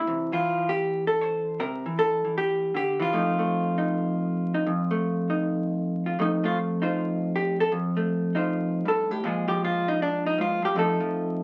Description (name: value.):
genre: solo jazz.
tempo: 157 BPM.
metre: 4/4.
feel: swing 65% on 8ths.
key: F mixolydian.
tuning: A4 = 440 Hz.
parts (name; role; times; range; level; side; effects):
vintage hollow-body jazz guitar; solo; 0.0-11.4 s; F2 to C5; -26 LUFS; equal; none.
room: moderate club reverb, RT60 0.6 s.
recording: very old 78 rpm record, vinyl crackle.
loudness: -26 LUFS.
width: mono.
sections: 0.0-6.2 A section; 6.2-11.4 B section.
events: hollow-body jazz guitar solo 6.2-11.4.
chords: 0.1 C7; 3.1 F7; 9.2 Bb5; 10.8 F7.